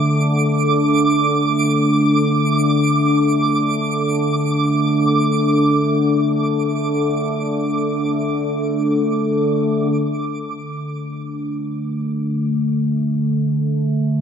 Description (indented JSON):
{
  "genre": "ambient",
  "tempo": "free time",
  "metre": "none",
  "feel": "none",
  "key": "unclear",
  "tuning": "A4 = 439 Hz",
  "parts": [
    { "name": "analog drone", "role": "drone", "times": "0.0-14.2 s", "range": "D3 to A3", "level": "-17 LUFS", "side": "left 1 dB", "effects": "chorus, phaser" },
    { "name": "twinkling granular texture", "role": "texture", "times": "0.0-9.9 s", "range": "D6", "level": "-23 LUFS", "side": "right 5 dB", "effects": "built-in reverb" }
  ],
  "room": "wet plate reverb, RT60 3.2 s",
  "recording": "none",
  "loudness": "-16 LUFS",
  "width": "side -7 dB against mid",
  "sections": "0.0-9.9 A section; 9.9-14.2 B section",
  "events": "none",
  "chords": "0.0 D5"
}